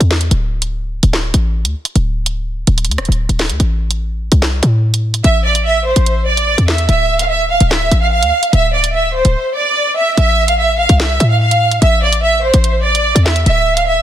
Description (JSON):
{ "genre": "hip hop, drill", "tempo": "146 BPM", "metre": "4/4", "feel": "half-time", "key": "A minor", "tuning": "A4 = 440 Hz", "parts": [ { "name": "short 808-style bass", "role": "bass", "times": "0.0-14.0 s", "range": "D1 to A2", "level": "-14 LUFS", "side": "equal", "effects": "none" }, { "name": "drill drum kit", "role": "drums", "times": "0.0-13.9 s", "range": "handclaps, hi-hat, rim click, snare drum", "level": "-18 LUFS", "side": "right 1 dB", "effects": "none" }, { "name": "warm symphonic violin section", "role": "melody", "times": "5.2-14.0 s", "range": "C5 to F5", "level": "-13 LUFS", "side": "right 2 dB", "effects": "none" } ], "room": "light reverb", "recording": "dense, heavily limited modern master", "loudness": "-11 LUFS", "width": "side -11 dB against mid", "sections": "0.0-14.0 A section", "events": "break 0.0-5.2, 9.4-10.2", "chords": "0.3 D5; 3.6 N.C.; 6.9 Dm; 10.2 A5; 13.5 N.C." }